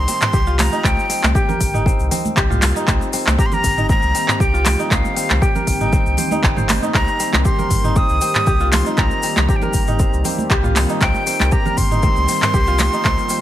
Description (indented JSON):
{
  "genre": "afro house",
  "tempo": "118 BPM",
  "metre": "4/4",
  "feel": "swing 53% on 16ths",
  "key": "C minor",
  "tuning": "A4 = 443 Hz",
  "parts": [
    { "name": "breathy bright jazz flute", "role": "melody", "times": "0.0-13.4 s", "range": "F5 to Eb6", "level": "-22 LUFS", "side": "equal", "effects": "none" },
    { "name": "warm analog pad", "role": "sustained chords", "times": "0.0-13.4 s", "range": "Eb3 to G4", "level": "-26 LUFS", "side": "equal", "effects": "chorus, sidechain pumping" },
    { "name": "kora", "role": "arpeggios", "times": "0.0-13.4 s", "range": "Bb3 to C5", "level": "-24 LUFS", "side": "equal", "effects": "sidechain pumping, digital delay" },
    { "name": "warm sub bass", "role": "bass", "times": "0.0-13.2 s", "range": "G1 to C2", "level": "-20 LUFS", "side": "equal", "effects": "sidechain pumping" },
    { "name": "afro-pop drum kit", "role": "drums", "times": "0.1-13.4 s", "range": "handclaps, hi-hat, toms", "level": "-21 LUFS", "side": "equal", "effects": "none" },
    { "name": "cabasa", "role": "percussion", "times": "0.1-13.4 s", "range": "none", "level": "-30 LUFS", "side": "left 3 dB", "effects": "none" },
    { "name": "congas", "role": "percussion", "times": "0.1-13.3 s", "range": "none", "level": "-26 LUFS", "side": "right 3 dB", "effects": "none" },
    { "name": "electronic kick drum", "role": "drums", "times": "0.3-13.2 s", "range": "none", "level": "-18 LUFS", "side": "equal", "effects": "none" }
  ],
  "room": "little or no reverb",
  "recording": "none",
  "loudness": "-14 LUFS",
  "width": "side -12 dB against mid",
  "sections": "0.0-13.4 A section",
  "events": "none",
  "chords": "0.0 Cm7"
}